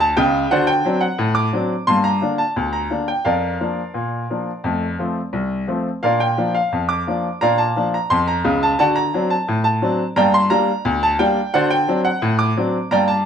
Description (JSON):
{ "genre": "ragtime piano", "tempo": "87 BPM", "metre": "2/4", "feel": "straight", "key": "Bb major", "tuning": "A4 = 441 Hz", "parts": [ { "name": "bright baby grand piano", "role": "solo", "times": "0.0-13.3 s", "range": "C2 to D6", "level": "-16 LUFS", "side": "equal", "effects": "none" } ], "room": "moderate small room reverb, RT60 0.5 s", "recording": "worn, warbling old tape, cassette tape, warbly pitch drift", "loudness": "-16 LUFS", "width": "side -8 dB against mid", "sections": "0.0-13.3 A section", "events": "none", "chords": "0.0 G5; 0.5 D7; 1.9 Gm; 3.3 Bb/F; 4.6 F; 6.0 Bb; 8.8 D7; 10.2 Gm; 11.5 D7" }